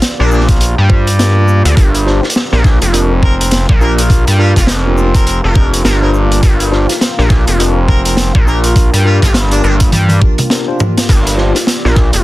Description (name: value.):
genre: glitch hop.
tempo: 103 BPM.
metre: 4/4.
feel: swing 60% on 16ths.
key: G minor.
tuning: A4 = 440 Hz.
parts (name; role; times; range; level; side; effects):
dark analog pad; sustained chords; 0.0-12.2 s; Bb3 to D5; -22 LUFS; left 2 dB; chorus, phaser, vintage 12-bit sampler grit, sidechain pumping.
crunchy breakbeat drum kit; drums; 0.0-12.2 s; crash cymbal, hi-hat, shaker, snare drum, toms; -16 LUFS; equal; none.
warm harmonica; melody; 0.2-9.7 s; D4 to Bb4; -23 LUFS; left 1 dB; digital delay.
mellow tine electric piano; stabs; 0.2-12.1 s; D4 to C5; -20 LUFS; left 1 dB; slow stereo tremolo, sidechain pumping, digital delay.
gritty driven synth bass; bass; 0.2-12.2 s; F1 to G2; -11 LUFS; equal; none.
electronic kick drum; drums; 0.5-12.1 s; none; -10 LUFS; equal; none.
room: little or no reverb.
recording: dense, heavily limited modern master.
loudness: -8 LUFS.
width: side -17 dB against mid.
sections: 0.0-12.2 A section.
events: drum fill 9.9-11.1.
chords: 0.0 Gm7.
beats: 0.02 0.61 1.19 | 1.77 2.35 2.94 3.52 | 4.10 4.68 5.27 5.85 | 6.43 7.01 7.60 8.18 | 8.76 9.34 9.93 10.51 | 11.09 11.67.